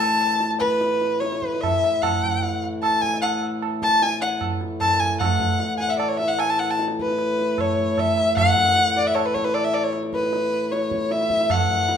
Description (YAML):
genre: indian classical, Hindustani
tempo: 152 BPM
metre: 4/4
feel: straight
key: A raga bilaval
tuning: A4 = 441 Hz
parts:
  - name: rich violin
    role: melody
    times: 0.0-12.0 s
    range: B4 to A5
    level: -20 LUFS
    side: left 2 dB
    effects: none
  - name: pedal harmonium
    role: drone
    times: 0.0-12.0 s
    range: A2 to E3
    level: -28 LUFS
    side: left 1 dB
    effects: none
  - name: tabla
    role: percussion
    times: 0.0-12.0 s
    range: none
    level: -27 LUFS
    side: right 6 dB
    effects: none
room: moderate recital hall reverb, RT60 1.4 s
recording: minimal, uncompressed stereo recording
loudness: -19 LUFS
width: side -8 dB against mid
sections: 0.0-5.2 A section; 5.2-12.0 B section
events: speeding up 0.0-12.0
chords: none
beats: 0.01 | 0.41 0.81 1.22 1.62 | 2.02 2.42 2.82 3.22 | 3.62 4.01 4.41 4.81 | 5.21 5.60 6.00 6.40 | 6.79 7.19 7.58 7.98 | 8.37 8.76 9.16 9.55 | 9.94 10.33 10.72 11.12 | 11.51 11.90